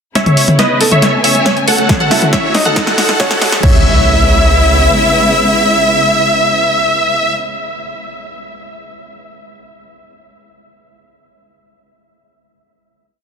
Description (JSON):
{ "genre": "uplifting trance", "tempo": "138 BPM", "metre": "4/4", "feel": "straight", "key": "C# minor", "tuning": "A4 = 439 Hz", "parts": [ { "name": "dense compressed supersaw", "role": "melody", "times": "0.2-7.3 s", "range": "A4 to F#5", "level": "-13 LUFS", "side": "equal", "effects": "sidechain pumping, low-pass filter, dub echo" }, { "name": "clear concert grand piano", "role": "second line", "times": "0.2-7.3 s", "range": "A3 to E5", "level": "-21 LUFS", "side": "right 1 dB", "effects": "ping-pong delay" }, { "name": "wide unison pluck", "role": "second line", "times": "0.2-7.3 s", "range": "D#5 to F#5", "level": "-22 LUFS", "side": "right 1 dB", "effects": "none" }, { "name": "dark symphonic string section", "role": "sustained chords", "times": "0.2-7.3 s", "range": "C#3 to G#5", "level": "-19 LUFS", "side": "left 2 dB", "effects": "sidechain pumping" }, { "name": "punchy analog drum machine", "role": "drums", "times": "0.2-3.7 s", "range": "crash cymbal, hi-hat, snare drum, toms", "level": "-16 LUFS", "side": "left 1 dB", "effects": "none" }, { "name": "riser and impact", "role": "sound effects", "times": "1.6-7.4 s", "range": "none", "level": "-20 LUFS", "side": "equal", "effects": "none" }, { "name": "tight sequencer bass", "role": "bass", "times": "0.3-4.9 s", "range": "B1 to C#2", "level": "-17 LUFS", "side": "equal", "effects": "tube saturation, sidechain pumping, high-pass filter" }, { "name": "electronic kick drum", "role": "drums", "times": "1.9-3.7 s", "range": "none", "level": "-14 LUFS", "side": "equal", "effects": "overdrive" } ], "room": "light reverb, digital ambience", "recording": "dense, heavily limited modern master, high-pass filter", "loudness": "-9 LUFS", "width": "side -6 dB against mid", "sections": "0.2-3.6 build; 3.6-7.1 final chord", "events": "build-up 0.2-3.6; drum fill 0.2-3.6; filter sweep 0.2-3.6", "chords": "0.2 C#m7; 1.0 Amaj7/C#; 1.9 A6/C#; 2.8 F#m/C#; 3.6 C#m7" }